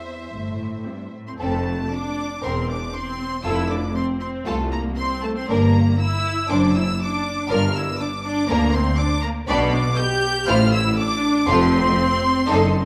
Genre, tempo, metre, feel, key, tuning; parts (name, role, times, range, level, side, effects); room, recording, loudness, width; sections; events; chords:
quick classical-period movement for string orchestra; 119 BPM; 4/4; rubato; F major; A4 = 441 Hz
clear symphonic violin section; melody; 0.0-12.8 s; C5 to G6; -28 LUFS; equal
rich studio violin section; second line; 0.0-12.7 s; C4 to E5; -27 LUFS; equal
clear symphonic viola section; accompaniment; 0.0-12.8 s; A3 to G4; -27 LUFS; equal
rich symphonic cello section; bass; 0.0-12.8 s; C2 to B2; -28 LUFS; equal
rich symphonic double bass section; bass; 0.3-12.8 s; E1 to D2; -27 LUFS; equal
wet stone room reverb, RT60 1.3 s; dark, warm production; -21 LUFS; mono
0.0-1.4 A section; 1.4-12.8 B section
0.0 C; 1.4 F; 2.4 C7/E; 3.5 F; 5.5 Gm; 6.5 D7/F#; 7.5 Gm; 9.5 G/B; 10.5 Am; 11.5 F